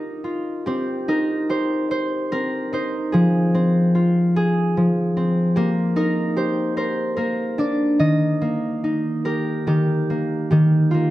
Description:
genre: children's music.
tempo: 49 BPM (dotted quarters).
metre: 6/8.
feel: rubato.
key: Eb major.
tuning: A4 = 440 Hz.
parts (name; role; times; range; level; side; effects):
concert harp; solo; 0.0-11.1 s; Eb3 to Eb5; -18 LUFS; equal; none.
room: moderate recital hall reverb, RT60 1.3 s.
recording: none.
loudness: -18 LUFS.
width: side -15 dB against mid.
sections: 0.7-10.5 A section.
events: none.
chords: 0.0 Ebadd9; 3.1 Fm; 5.6 Eb/Bb; 6.8 Bb; 8.0 Eb.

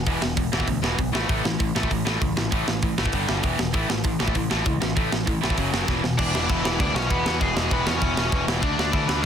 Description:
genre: punk rock.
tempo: 196 BPM.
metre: 4/4.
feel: straight.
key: unclear.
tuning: A4 = 438 Hz.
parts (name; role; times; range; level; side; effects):
distorted electric guitar; riff; 0.0-9.3 s; E2 to D4; -28 LUFS; left 14 dB; overdrive.
tight distorted guitar; riff; 0.0-9.3 s; E2 to D4; -28 LUFS; right 13 dB; distortion.
growling picked electric bass; bass; 0.0-9.2 s; E1 to E2; -28 LUFS; equal; overdrive.
tight metal drum kit; drums; 0.1-9.2 s; crash cymbal, hi-hat, kick drum, snare drum; -25 LUFS; equal; none.
overdriven electric guitar; melody; 6.2-9.3 s; E3 to D5; -26 LUFS; left 2 dB; none.
room: little or no reverb.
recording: dense, heavily limited modern master.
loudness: -21 LUFS.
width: side -8 dB against mid.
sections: 0.0-6.2 A section; 6.2-9.3 B section.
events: drum fill 5.9-6.2.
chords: 0.0 E5; 1.1 A5; 3.1 G5; 3.4 E5; 3.7 A5; 5.6 F#5; 5.9 E5; 6.2 E; 8.6 D5.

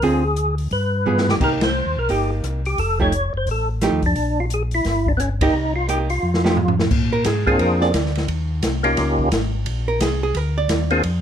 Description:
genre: soul jazz organ trio.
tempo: 174 BPM.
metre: 4/4.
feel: swing 62% on 8ths.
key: Bb mixolydian.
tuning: A4 = 442 Hz.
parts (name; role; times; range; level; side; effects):
percussive tonewheel organ; melody; 0.0-11.0 s; Bb3 to Db5; -21 LUFS; left 1 dB; slow rotary speaker, chorus vibrato, plate reverb.
archtop guitar, miked and amplified; accompaniment; 0.0-11.0 s; D3 to D5; -22 LUFS; right 4 dB; none.
mellow tonewheel organ; bass; 0.0-11.2 s; F1 to Bb2; -22 LUFS; left 1 dB; slow rotary speaker.
open jazz drum kit; drums; 0.0-11.1 s; crash cymbal, hi-hat, kick drum, ride cymbal, rim click, snare drum, toms; -23 LUFS; equal; none.
room: light reverb.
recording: dark, warm production.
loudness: -17 LUFS.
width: side -9 dB against mid.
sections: 0.0-6.9 A section; 6.9-11.2 B section.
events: drum fill 1.1-1.4, 6.2-6.9; band accent 1.6, 5.4; hollow-body jazz guitar solo 6.9-11.2.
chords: 0.0 Dm7b5; 0.7 G7b9; 1.4 Cm7; 2.8 F9; 4.2 Bb7#11; 4.8 Gdim7; 5.5 Cm7; 6.2 F9; 6.9 Bb9; 8.3 Eb9; 9.7 Bb9.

